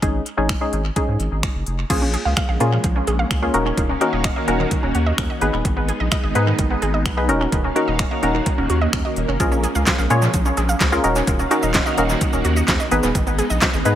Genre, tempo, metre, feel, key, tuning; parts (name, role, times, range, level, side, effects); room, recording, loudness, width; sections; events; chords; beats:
dance-pop; 128 BPM; 4/4; straight; A4 = 441 Hz
wavetable chord stab; accompaniment; 0.0-14.0 s; G#3 to C#5; -22 LUFS; left 1 dB; sidechain pumping, dub echo
saturated sub bass; bass; 0.0-14.0 s; D#1 to A#2; -22 LUFS; equal; sidechain pumping
pop drum kit; drums; 0.0-14.0 s; crash cymbal, finger snaps, handclaps, hi-hat, kick drum, shaker, snare drum; -22 LUFS; equal; overdrive, dub echo
phased string machine; sustained chords; 1.9-14.0 s; D#3 to E#5; -26 LUFS; equal; ensemble chorus, phaser, sidechain pumping
wide unison pluck; arpeggios; 1.9-14.0 s; D#3 to E#5; -26 LUFS; right 3 dB; sidechain pumping, dub echo
light reverb; echo-heavy mix; -17 LUFS; side -11 dB against mid
0.0-1.9 A section; 1.9-14.0 B section
0.0 G#sus4; 1.9 A#m7; 3.5 D#m7; 5.4 G#m; 7.3 D#m7; 9.4 A#m7; 11.0 D#m7; 12.9 G#m
| 0.03 0.49 0.96 1.43 | 1.90 2.37 2.84 3.31 | 3.77 4.24 4.71 5.18 | 5.65 6.12 6.59 7.06 | 7.53 7.99 8.46 8.93 | 9.40 9.87 10.34 10.81 | 11.28 11.74 12.21 12.68 | 13.15 13.62